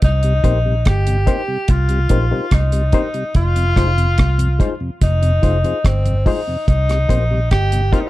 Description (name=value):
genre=roots reggae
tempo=72 BPM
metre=4/4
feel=straight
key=F minor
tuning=A4 = 440 Hz
part: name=warm tenor saxophone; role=melody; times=0.0-8.1 s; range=C4 to G4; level=-22 LUFS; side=left 1 dB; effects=tape echo
part: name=vintage muted fingered electric bass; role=bass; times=0.0-7.9 s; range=F1 to C2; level=-16 LUFS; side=equal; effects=none
part: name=deep reggae drum kit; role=drums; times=0.0-8.1 s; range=hi-hat, kick drum, rim click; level=-17 LUFS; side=equal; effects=none
part: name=mellow tonewheel organ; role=accompaniment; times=0.2-8.0 s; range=F2 to F4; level=-25 LUFS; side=left 1 dB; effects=overdrive, chorus vibrato, slow rotary speaker
part: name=barky reed electric piano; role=stabs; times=0.4-8.1 s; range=Eb4 to C5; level=-23 LUFS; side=left 6 dB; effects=overdrive, fast tremolo
room=little or no reverb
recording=dark, warm production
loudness=-14 LUFS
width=side -17 dB against mid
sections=0.0-8.1 A section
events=none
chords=0.0 Cm7; 3.4 Fm7; 6.7 Cm7